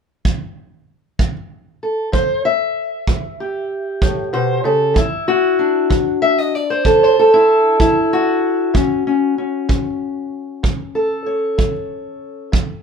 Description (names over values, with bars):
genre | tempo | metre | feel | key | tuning
acoustic country blues, solo or duo | 64 BPM (dotted quarters) | 12/8 | straight | A mixolydian | A4 = 440 Hz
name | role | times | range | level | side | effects
kick drum | drums | 0.3-12.7 s | none | -18 LUFS | right 2 dB | none
fingerpicked steel-string acoustic guitar | melody | 1.2-12.8 s | A2 to E5 | -15 LUFS | left 1 dB | none
room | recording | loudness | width
light reverb | minimal, uncompressed stereo recording | -14 LUFS | side -6 dB against mid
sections
0.0-1.2 A section; 1.2-12.8 B section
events
none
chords
0.0 N.C.; 1.2 A7(no3); 5.0 N.C.; 8.7 A